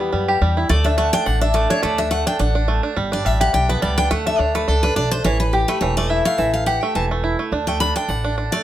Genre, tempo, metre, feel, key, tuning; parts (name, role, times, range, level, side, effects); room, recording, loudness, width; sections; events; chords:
bluegrass; 211 BPM; 4/4; swing 55% on 8ths; D major; A4 = 440 Hz
picked steel-string acoustic guitar; accompaniment; 0.0-8.6 s; G4 to B5; -21 LUFS; left 3 dB
bluegrass banjo; arpeggios; 0.0-8.6 s; E3 to G4; -21 LUFS; right 3 dB
upright bass; bass; 0.1-8.5 s; E1 to F#2; -21 LUFS; equal
light reverb; -16 LUFS; side -12 dB against mid
0.0-3.0 A section; 3.0-8.6 A section
steel-string acoustic guitar solo 0.0-8.6
0.0 Em; 0.7 D; 3.0 G; 4.1 D5; 5.2 A5; 7.5 D